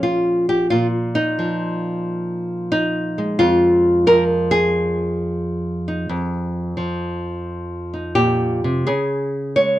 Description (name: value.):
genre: solo jazz.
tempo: 89 BPM.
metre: 4/4.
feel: swing 67% on 8ths, rubato.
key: F minor.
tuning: A4 = 440 Hz.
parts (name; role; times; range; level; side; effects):
nylon-string guitar; solo; 0.0-9.8 s; F2 to Db5; -17 LUFS; equal; none.
room: moderate studio ambience, RT60 0.5 s.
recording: none.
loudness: -17 LUFS.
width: side -14 dB against mid.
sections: 0.0-9.8 A section.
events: none.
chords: 0.0 Bbm7; 3.4 Fm7; 8.9 Db5.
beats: 0.05 | 0.72 1.39 2.06 2.73 | 3.40 4.07 4.74 5.42 | 6.09 6.77 7.46 8.16 | 8.87 9.57.